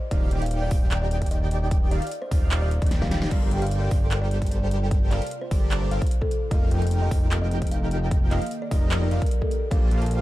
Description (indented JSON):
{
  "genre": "future bass",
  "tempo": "150 BPM",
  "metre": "4/4",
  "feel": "half-time",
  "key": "unclear",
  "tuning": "A4 = 438 Hz",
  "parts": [
    { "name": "kalimba", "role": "melody", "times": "0.1-10.1 s", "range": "A4 to A5", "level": "-34 LUFS", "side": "equal", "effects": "sidechain pumping, tape echo" },
    { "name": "airy dreamy lead", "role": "arpeggios", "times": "0.1-10.2 s", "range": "D5 to G5", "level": "-39 LUFS", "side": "equal", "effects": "chorus, sidechain pumping" },
    { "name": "supersaw chords", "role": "riff", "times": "0.1-10.2 s", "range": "Eb3 to G5", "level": "-32 LUFS", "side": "equal", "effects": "lush chorus, cassette tape, sidechain pumping" },
    { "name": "fat analog bass", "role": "bass", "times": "0.1-10.2 s", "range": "Eb1 to Bb1", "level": "-24 LUFS", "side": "equal", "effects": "sidechain pumping" },
    { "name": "big-room dance drum kit", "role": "drums", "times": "0.1-10.2 s", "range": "crash cymbal, handclaps, hi-hat, snare drum", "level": "-34 LUFS", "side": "equal", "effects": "none" },
    { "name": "electronic kick drum", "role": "drums", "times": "0.1-9.8 s", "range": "none", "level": "-23 LUFS", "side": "equal", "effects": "none" },
    { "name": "ethereal airy pad", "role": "sustained chords", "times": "4.5-10.2 s", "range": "C3 to G4", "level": "-39 LUFS", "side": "right 2 dB", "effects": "ensemble chorus, built-in reverb, phaser, vintage 12-bit sampler grit, sidechain pumping" }
  ],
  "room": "digital ambience",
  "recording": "dark, warm production",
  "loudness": "-21 LUFS",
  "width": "side -16 dB against mid",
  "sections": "0.0-3.3 A section; 3.3-10.2 A section",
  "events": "drop 0.0-3.3, 3.3-10.2; drum fill 2.9-3.3",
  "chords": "0.0 Ebmaj9; 3.3 Gm11; 6.5 F9sus4; 9.7 Bb6",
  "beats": "| 0.11 0.51 0.91 1.31 | 1.71 2.11 2.51 2.91 | 3.31 3.71 4.11 4.51 | 4.91 5.31 5.71 6.11 | 6.51 6.91 7.31 7.71 | 8.11 8.51 8.91 9.31 | 9.71 10.11"
}